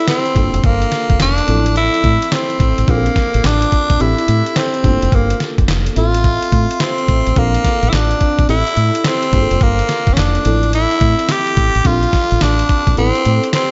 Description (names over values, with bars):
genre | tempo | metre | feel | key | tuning
R&B, new jack swing | 107 BPM | 4/4 | swing 64% on 16ths | G dorian | A4 = 440 Hz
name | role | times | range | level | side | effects
growling tenor saxophone | melody | 0.0-13.7 s | Bb3 to G4 | -19 LUFS | equal | slapback echo
FM electric piano with soft pad layer | accompaniment | 0.0-13.7 s | F3 to E5 | -25 LUFS | equal | chorus
dusty soul sampler-style drum kit | drums | 0.1-13.7 s | handclaps, hi-hat, kick drum, snare drum | -20 LUFS | equal | none
deep dub fingered electric bass | bass | 0.4-13.4 s | F1 to A2 | -18 LUFS | equal | none
room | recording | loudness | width
light reverb | nothing above 7.7 kHz | -15 LUFS | mono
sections
0.0-13.7 A section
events
none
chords
0.4 Gm7; 1.5 Dm9/A (rootless); 2.9 Bbmaj7; 4.0 Am7; 4.8 Gm7; 6.0 Fmaj7/A; 7.4 Bbmaj7; 8.5 Am7; 9.3 Gm7; 10.4 Fmaj13/A; 11.8 Bbmaj7; 13.0 Am7